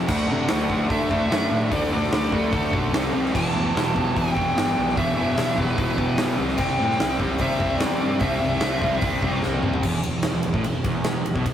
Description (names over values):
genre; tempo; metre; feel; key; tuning
hard rock; 148 BPM; 4/4; straight; E minor; A4 = 445 Hz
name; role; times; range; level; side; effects
distorted electric guitar; riff; 0.0-9.8 s; C3 to G4; -31 LUFS; right 1 dB; distortion
overdriven electric guitar; riff; 0.0-11.5 s; E2 to D4; -30 LUFS; right 4 dB; none
overdriven semi-hollow guitar; riff; 0.0-11.5 s; E2 to D4; -26 LUFS; left 3 dB; none
growling picked electric bass; bass; 0.0-11.5 s; E1 to D3; -29 LUFS; right 1 dB; overdrive
bluesy overdriven lead guitar; melody; 0.1-9.4 s; A4 to A5; -27 LUFS; equal; distortion
huge arena drum kit; drums; 0.1-11.5 s; crash cymbal, hi-hat, kick drum, ride cymbal, snare drum, toms; -26 LUFS; right 1 dB; none
room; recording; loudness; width
moderate small room reverb, RT60 0.6 s; rough rehearsal-room recording; -20 LUFS; side -10 dB against mid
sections
0.0-9.8 A section; 9.8-11.5 B section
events
drum fill 9.4-9.8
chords
0.1 D; 2.9 C5; 3.3 Em; 6.4 C; 9.8 E5